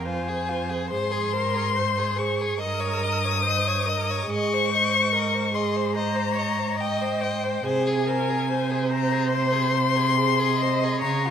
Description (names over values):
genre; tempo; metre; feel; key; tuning
classical, slow romantic movement for string quartet; 71 BPM; 4/4; rubato; Ab major from 7.6 s; A4 = 440 Hz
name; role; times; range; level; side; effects
dark violin; melody; 0.0-11.3 s; G5 to Eb6; -25 LUFS; left 7 dB; none
clear violin; second line; 0.0-11.3 s; F4 to Eb5; -30 LUFS; left 2 dB; none
rich viola; accompaniment; 0.0-11.3 s; Ab4 to Eb5; -29 LUFS; right 3 dB; none
rich cello; bass; 0.0-11.3 s; F2 to Db3; -27 LUFS; right 4 dB; none
room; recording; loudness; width
wet concert hall reverb, RT60 1.8 s; none; -21 LUFS; side -8 dB against mid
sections
0.0-11.3 A section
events
none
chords
0.0 Fm; 0.9 Ab; 2.6 Eb7/G; 4.3 Ab; 7.6 Ab/C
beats
0.04 | 0.90 1.75 2.59 3.43 | 4.28 5.12 5.95 6.78 | 7.64 8.48 9.31 10.16 | 11.02